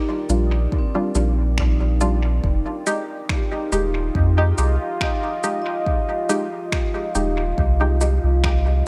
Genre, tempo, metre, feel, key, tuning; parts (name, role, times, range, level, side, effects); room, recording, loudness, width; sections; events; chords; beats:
ambient dub; 70 BPM; 4/4; straight; F dorian; A4 = 440 Hz
deep dark ambient pad; sustained chords; 0.0-8.9 s; Eb4 to G5; -32 LUFS; equal; chorus, built-in reverb
vibraphone with medium mallets; arpeggios; 0.0-8.9 s; C4 to F5; -31 LUFS; equal; dub echo
filtered dub chord stab; stabs; 0.3-8.2 s; G3 to G4; -28 LUFS; equal; subtle chorus, dub echo
soft dub sub bass; bass; 0.3-8.8 s; Eb1 to F2; -21 LUFS; equal
electronic shaker and finger snaps; drums; 0.3-8.6 s; -33 LUFS; equal; studio ambience, dub echo
electronic kick drum; drums; 0.7-8.6 s; -26 LUFS; equal; studio ambience
light reverb; -21 LUFS; mono
0.0-8.9 A section
0.0 Ebmaj7; 2.4 Fm9
0.72 1.58 | 2.44 3.29 4.15 5.01 | 5.87 6.72 7.58 8.44